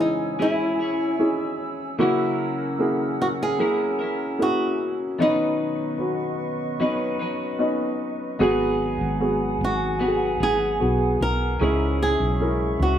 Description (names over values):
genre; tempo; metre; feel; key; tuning
pop ballad; 75 BPM; 4/4; straight; G# minor; A4 = 440 Hz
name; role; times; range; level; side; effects
flamenco guitar; melody; 0.0-13.0 s; D#4 to A#4; -24 LUFS; equal; none
warm baby grand piano; accompaniment; 0.0-13.0 s; G#2 to A#4; -25 LUFS; equal; none
mellow small flute group; sustained chords; 0.0-13.0 s; C#4 to E6; -31 LUFS; right 2 dB; none
twelve-string electric guitar; arpeggios; 0.0-13.0 s; G#2 to B4; -30 LUFS; left 2 dB; none
woody fretless electric bass; bass; 8.4-13.0 s; G#1 to C#2; -26 LUFS; equal; none
room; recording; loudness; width
moderate studio reverb, RT60 0.6 s; band playing live in one room; -21 LUFS; side -10 dB against mid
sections
0.0-13.0 A section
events
none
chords
0.0 C#m; 2.0 F#7/C#; 5.2 Badd9; 8.4 G#m7; 11.6 C#m